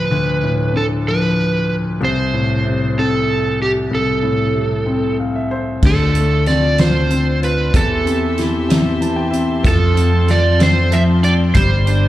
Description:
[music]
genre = six-eight pop ballad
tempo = 63 BPM (dotted quarters)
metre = 6/8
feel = straight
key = A minor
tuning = A4 = 440 Hz
[part]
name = overdriven slide guitar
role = melody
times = 0.0-12.1 s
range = G4 to E5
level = -19 LUFS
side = right 3 dB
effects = slapback echo, digital delay
[part]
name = clear grand piano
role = accompaniment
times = 0.0-12.1 s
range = C2 to A5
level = -18 LUFS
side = left 2 dB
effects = none
[part]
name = warm studio string section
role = sustained chords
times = 5.8-12.1 s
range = F4 to C6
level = -27 LUFS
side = left 1 dB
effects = none
[part]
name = sustaining fretless electric bass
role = bass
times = 5.8-12.1 s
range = G1 to F2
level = -16 LUFS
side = equal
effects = lush chorus
[part]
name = loose indie drum kit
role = drums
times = 5.8-12.0 s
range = crash cymbal, hi-hat, kick drum, snare drum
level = -18 LUFS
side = equal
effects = none
[part]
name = direct-recorded clean electric guitar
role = arpeggios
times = 9.6-12.1 s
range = G3 to D4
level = -31 LUFS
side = left 2 dB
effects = none
[sound]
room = small room ambience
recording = live gig heard through the venue's PA, club reverb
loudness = -14 LUFS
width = side -14 dB against mid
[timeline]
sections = 0.0-5.8 A section; 5.8-12.1 B section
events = grand piano fill 4.9-5.8, 8.7-9.6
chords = 0.0 Dm; 2.0 Am/C; 5.8 Dm7; 7.7 Am7/E; 9.6 F; 11.6 Gsus4

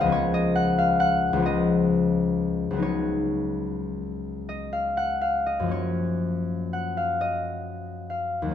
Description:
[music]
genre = classical, solo harp piece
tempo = 38-46 BPM (dotted quarters)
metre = 6/8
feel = rubato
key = F# major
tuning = A4 = 439 Hz
[part]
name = concert harp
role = solo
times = 0.0-8.5 s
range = C#2 to F#5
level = -23 LUFS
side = left 2 dB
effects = none
[sound]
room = wet stone room reverb, RT60 1.2 s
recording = faint mains hum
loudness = -23 LUFS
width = side -9 dB against mid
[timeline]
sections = 0.0-8.5 A section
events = none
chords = 0.1 C#13; 5.7 F#maj7

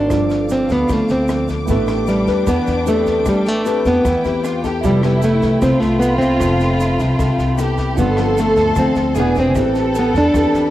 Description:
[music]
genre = bossa nova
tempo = 152 BPM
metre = 4/4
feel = straight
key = A minor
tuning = A4 = 440 Hz
[part]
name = nylon-string guitar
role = melody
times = 0.0-10.7 s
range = G3 to D4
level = -17 LUFS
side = equal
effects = cassette tape
[part]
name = warm concert grand piano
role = accompaniment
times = 0.0-10.7 s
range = B3 to C6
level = -28 LUFS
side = right 9 dB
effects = cassette tape
[part]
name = warm studio string section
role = sustained chords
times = 0.0-10.7 s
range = G#4 to D6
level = -28 LUFS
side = left 1 dB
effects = cassette tape
[part]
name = upright bass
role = bass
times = 0.0-10.7 s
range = E1 to E2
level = -21 LUFS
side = equal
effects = none
[part]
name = nylon-string guitar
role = accompaniment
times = 0.1-10.7 s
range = G2 to B4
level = -24 LUFS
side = left 8 dB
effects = cassette tape
[part]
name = compact cocktail drum kit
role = drums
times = 0.1-10.6 s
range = kick drum, rim click, snare drum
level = -27 LUFS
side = equal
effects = cassette tape
[part]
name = egg shaker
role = percussion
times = 0.1-10.7 s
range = none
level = -40 LUFS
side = right 11 dB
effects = none
[part]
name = warm studio violin section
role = second line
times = 1.7-10.7 s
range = D4 to A4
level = -22 LUFS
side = right 1 dB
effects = cassette tape
[sound]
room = moderate studio reverb, RT60 0.6 s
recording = home recording on cassette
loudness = -14 LUFS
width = side -14 dB against mid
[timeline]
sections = 0.0-10.7 A section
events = none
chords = 0.1 G9sus4; 1.7 Am9; 4.8 Fmaj9#11; 8.0 G9sus4; 9.2 E7; 9.6 Am9

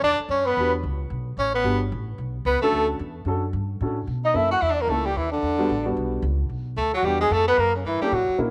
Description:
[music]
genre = jazz, small-group swing and bop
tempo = 223 BPM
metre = 4/4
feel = swing 60% on 8ths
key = B minor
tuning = A4 = 440 Hz
[part]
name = mellow flugelhorn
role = melody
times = 0.0-8.4 s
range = C#4 to F#5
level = -25 LUFS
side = equal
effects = none
[part]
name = edgy tenor saxophone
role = second line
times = 0.0-8.4 s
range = C#3 to F#4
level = -30 LUFS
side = equal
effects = none
[part]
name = upright bass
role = bass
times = 0.0-8.5 s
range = G1 to B2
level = -30 LUFS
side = equal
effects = none
[part]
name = warm baby grand piano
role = accompaniment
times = 0.6-8.5 s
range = G3 to A#4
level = -30 LUFS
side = equal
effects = none
[sound]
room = moderate echo chamber reverb, RT60 1.9 s, small room ambience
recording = none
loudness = -24 LUFS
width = mono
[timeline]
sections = 0.0-8.5 A section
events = none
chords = 0.0 Em7; 2.2 Bm7; 4.3 F#7#9; 5.4 Em7; 6.5 Bm; 7.0 Em7; 7.6 F#7#9

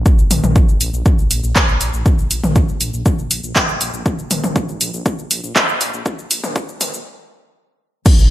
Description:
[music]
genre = melodic techno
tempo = 120 BPM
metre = 4/4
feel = straight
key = unclear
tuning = A4 = 438 Hz
[part]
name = swelling detuned saw bass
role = bass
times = 0.0-8.3 s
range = Ab1 to Bb1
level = -22 LUFS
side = equal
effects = sidechain pumping
[part]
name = electronic kick drum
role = drums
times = 0.1-8.2 s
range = none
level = -14 LUFS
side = equal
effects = none
[part]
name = techno drum kit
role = drums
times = 0.1-8.3 s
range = crash cymbal, handclaps, hi-hat, shaker, toms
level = -18 LUFS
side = equal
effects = sidechain pumping on perc, sidechain pumping on hats, sidechain pumping on toms, sidechain pumping on cymbals
[sound]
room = light reverb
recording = high-pass filter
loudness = -14 LUFS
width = side -14 dB against mid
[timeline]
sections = 0.1-8.1 A section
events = build-up 0.1-8.1; filter sweep 0.1-8.1; stop 7.1-8.1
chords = none

